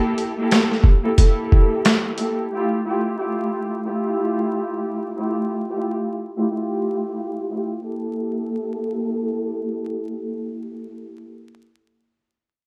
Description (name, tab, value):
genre	hip hop, boom-bap hip-hop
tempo	90 BPM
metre	4/4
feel	swing 60% on 16ths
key	G dorian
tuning	A4 = 439 Hz
part	warm studio string section	accompaniment	0.0-11.3 s	A3 to A4	-25 LUFS	equal	cassette tape, high-pass filter, low-pass filter
part	boom bap sampler-style drum kit	drums	0.2-2.4 s	hi-hat, kick drum, snare drum	-17 LUFS	equal	none
room	little or no reverb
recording	rough home demo mix, vinyl crackle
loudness	-22 LUFS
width	mono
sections	0.0-7.8 A section; 7.8-10.5 B section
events	filter sweep on string section 0.0-7.8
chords	0.0 Gm69; 2.5 Fmaj9; 7.8 Gm69